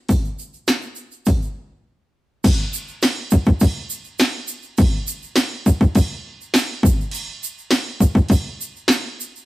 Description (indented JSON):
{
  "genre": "rock",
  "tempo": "102 BPM",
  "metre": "4/4",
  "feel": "straight",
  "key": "none",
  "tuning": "none",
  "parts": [
    { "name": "punchy analog drum machine", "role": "drums", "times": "0.1-9.0 s", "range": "crash cymbal, hi-hat, kick drum, snare drum", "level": "-16 LUFS", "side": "equal", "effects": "none" },
    { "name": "egg shaker", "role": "percussion", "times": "0.1-9.4 s", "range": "none", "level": "-30 LUFS", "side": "right 3 dB", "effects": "none" }
  ],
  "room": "light reverb",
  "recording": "rough rehearsal-room recording",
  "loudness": "-17 LUFS",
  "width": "side -17 dB against mid",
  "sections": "0.0-2.4 A section; 2.4-9.5 B section",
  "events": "break 1.9-2.4",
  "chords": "none"
}